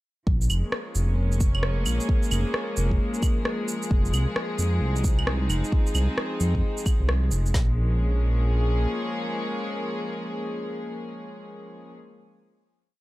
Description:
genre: future garage.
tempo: 132 BPM.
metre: 4/4.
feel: swing 63% on 16ths.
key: Bb minor.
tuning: A4 = 440 Hz.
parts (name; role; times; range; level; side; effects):
warm studio string section; sustained chords; 0.3-11.9 s; F3 to Ab4; -30 LUFS; left 1 dB; vintage 12-bit sampler grit, sidechain pumping.
dark detuned saw bass; bass; 0.3-8.9 s; F1 to F2; -23 LUFS; equal; sidechain pumping.
deep house drum kit; drums; 0.3-7.7 s; kick drum, snare drum; -23 LUFS; equal; small room reverb.
electronic shaker, claves and rim click; drums; 0.4-7.5 s; none; -30 LUFS; right 1 dB; small room reverb.
room: little or no reverb.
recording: none.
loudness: -22 LUFS.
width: side -18 dB against mid.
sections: 0.3-7.5 groove; 7.5-11.2 final chord.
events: none.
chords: 0.3 Bbm7; 3.9 Fm7; 7.5 Bbm7.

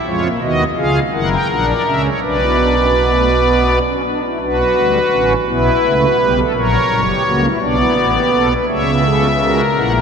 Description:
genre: classical, baroque-style 4-part fugue for pipe organ.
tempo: 56 BPM (dotted quarters).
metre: 6/8.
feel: straight.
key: B minor.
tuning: A4 = 441 Hz.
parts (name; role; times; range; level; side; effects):
pipe organ, strings celeste; solo; 0.1-10.0 s; F#1 to G5; -12 LUFS; equal; none.
room: wet cathedral reverb, RT60 5.8 s.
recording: none.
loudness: -13 LUFS.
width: side -6 dB against mid.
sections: 0.0-4.4 A section; 4.4-8.7 B section; 8.7-10.0 A section.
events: none.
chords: 0.1 C#7; 1.1 F#7; 2.2 Bm; 5.5 C#m7b5/B; 6.6 F#7; 7.6 Bm; 8.7 F#7#9/C#.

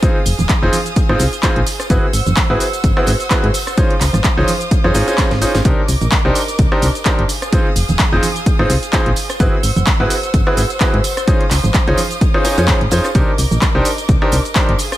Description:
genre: piano house.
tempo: 128 BPM.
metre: 4/4.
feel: swing 56% on 16ths.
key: unclear.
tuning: A4 = 440 Hz.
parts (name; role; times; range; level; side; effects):
rich chamber violin section; sustained chords; 0.0-15.0 s; Ab4 to E6; -25 LUFS; right 2 dB; sidechain pumping.
bright grand piano; riff; 0.0-14.7 s; C4 to C5; -19 LUFS; equal; sidechain pumping, ping-pong delay.
electronic kick drum; drums; 0.0-14.7 s; none; -16 LUFS; equal; overdrive.
house drum kit; drums; 0.0-15.0 s; handclaps, hi-hat, rim click, shaker, snare drum; -21 LUFS; equal; overdrive.
tambourine and congas; percussion; 0.0-15.0 s; none; -26 LUFS; right 4 dB; none.
solid FM bass; bass; 0.3-14.8 s; Eb1 to Ab2; -16 LUFS; equal; sidechain pumping.
room: little or no reverb.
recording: none.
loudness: -12 LUFS.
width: side -14 dB against mid.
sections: 0.0-15.0 A section.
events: drum fill 5.2-5.7.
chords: 0.0 Fm7; 1.9 Ab7alt; 3.8 Dbmaj9; 5.7 Cm9; 7.3 Fm7; 9.4 Ab7alt; 11.3 Dbmaj9; 13.2 Cm9.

